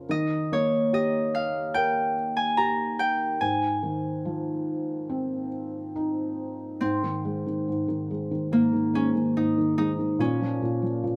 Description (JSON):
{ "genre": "children's music, lullaby", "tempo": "72 BPM", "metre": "4/4", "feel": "straight", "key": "Ab major", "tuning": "A4 = 440 Hz", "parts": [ { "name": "felt-muted upright piano", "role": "accompaniment", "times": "0.0-11.2 s", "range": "Ab2 to Bb4", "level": "-30 LUFS", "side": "equal", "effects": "none" }, { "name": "Celtic harp", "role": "melody", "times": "0.1-11.2 s", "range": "Bb3 to Bb5", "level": "-27 LUFS", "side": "equal", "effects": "none" } ], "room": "light reverb", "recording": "band playing live in one room", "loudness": "-26 LUFS", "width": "mono", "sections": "0.0-6.8 A section; 6.8-11.2 B section", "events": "none", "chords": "0.1 Eb; 3.4 Ab6; 6.8 Ab; 10.2 Bbm" }